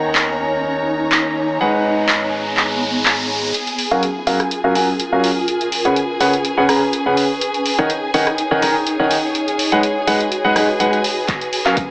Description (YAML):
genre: piano house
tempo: 124 BPM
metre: 4/4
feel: swing 54% on 16ths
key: F# major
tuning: A4 = 442 Hz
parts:
  - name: warm studio violin section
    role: sustained chords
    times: 0.0-11.9 s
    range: G#4 to A#5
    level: -24 LUFS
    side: equal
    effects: sidechain pumping
  - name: clear concert grand piano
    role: riff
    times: 0.0-11.8 s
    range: C#3 to A#5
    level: -18 LUFS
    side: equal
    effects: sidechain pumping, low-pass filter, dub echo
  - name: fat analog bass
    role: bass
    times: 0.0-3.5 s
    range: G#1 to D#2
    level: -34 LUFS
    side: equal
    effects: sidechain pumping
  - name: riser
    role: sound effects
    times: 1.0-3.5 s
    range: none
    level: -25 LUFS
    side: equal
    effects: none
  - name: granular cloud pad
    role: texture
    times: 0.0-11.9 s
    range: B3 to G#5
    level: -23 LUFS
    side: equal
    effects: built-in reverb, sidechain pumping
  - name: punchy analog drum machine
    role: drums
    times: 0.2-11.9 s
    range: handclaps, hi-hat, rim click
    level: -20 LUFS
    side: equal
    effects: high-pass filter on snare, high-pass filter on hats
  - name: electronic kick drum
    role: drums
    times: 11.3-11.9 s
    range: none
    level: -24 LUFS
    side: equal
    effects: none
room: moderate plate reverb, RT60 1.8 s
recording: AM radio sound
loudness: -14 LUFS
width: side -27 dB against mid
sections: 0.0-3.5 A section; 3.5-11.9 B section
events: riser 1.0-3.5; build-up 3.5-11.9; filter sweep on grand piano 3.5-11.9; drum fill 11.3-11.9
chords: 0.0 D#m7; 1.6 G#m7; 3.5 F#maj7; 5.5 C#7sus4; 7.4 D#m7; 9.3 G#m7; 11.3 F#maj7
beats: 0.16 0.64 1.12 | 1.61 2.09 2.58 3.06 | 3.54 4.03 4.51 5.00 | 5.48 5.96 6.45 6.93 | 7.41 7.90 8.38 8.87 | 9.35 9.83 10.32 10.80 | 11.29 11.77